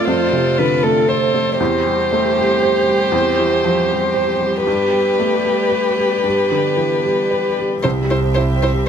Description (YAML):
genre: neoclassical piano and strings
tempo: 116 BPM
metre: 3/4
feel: rubato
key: C major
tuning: A4 = 444 Hz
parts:
  - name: dark violin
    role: melody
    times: 0.0-8.9 s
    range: A4 to C5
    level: -18 LUFS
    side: left 2 dB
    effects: none
  - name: dark viola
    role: accompaniment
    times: 0.0-8.7 s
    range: E4 to A4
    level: -23 LUFS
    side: right 8 dB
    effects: none
  - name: felt-muted upright piano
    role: accompaniment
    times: 0.0-8.9 s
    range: C2 to C5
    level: -19 LUFS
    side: right 1 dB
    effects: none
  - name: warm studio string section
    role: sustained chords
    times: 0.0-8.9 s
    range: B3 to E5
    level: -26 LUFS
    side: left 1 dB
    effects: none
  - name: dark double bass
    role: bass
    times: 7.8-8.9 s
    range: C2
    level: -18 LUFS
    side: right 1 dB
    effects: none
room: light reverb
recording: none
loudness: -14 LUFS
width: side -7 dB against mid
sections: 0.0-7.8 A section; 7.8-8.9 B section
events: none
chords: 0.0 F6; 1.6 C/E; 4.7 G; 7.8 C